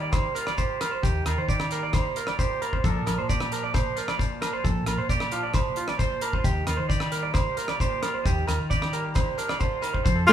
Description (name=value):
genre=highlife guitar band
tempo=133 BPM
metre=4/4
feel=straight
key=unclear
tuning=A4 = 441 Hz
part: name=twangy electric guitar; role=accompaniment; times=0.0-10.3 s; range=Bb2 to C5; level=-34 LUFS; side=left 6 dB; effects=none
part: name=electric guitar through a small old amp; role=arpeggios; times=0.0-10.3 s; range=F4 to D5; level=-29 LUFS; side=right 5 dB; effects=none
part: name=fingered electric bass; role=bass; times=0.0-10.3 s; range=Bb1 to Eb3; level=-30 LUFS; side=equal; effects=none
part: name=damped 70s drum kit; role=drums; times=0.1-10.3 s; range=hi-hat, kick drum, rim click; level=-27 LUFS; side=left 1 dB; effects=none
part: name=agogo bells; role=percussion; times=0.1-10.3 s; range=none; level=-37 LUFS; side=equal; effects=none
part: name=shekere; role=percussion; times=0.1-10.3 s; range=none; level=-35 LUFS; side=equal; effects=none
part: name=breathy tenor saxophone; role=melody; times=10.3 s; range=F4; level=-14 LUFS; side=left 2 dB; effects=none
part: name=mellow alto saxophone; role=second line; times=10.3 s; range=A3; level=-15 LUFS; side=right 2 dB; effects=none
room=moderate large studio reverb, RT60 1.0 s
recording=band playing live in one room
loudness=-23 LUFS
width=side -10 dB against mid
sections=0.0-10.1 A section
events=none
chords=0.0 Ebadd9; 2.8 Bb; 6.5 Ebadd9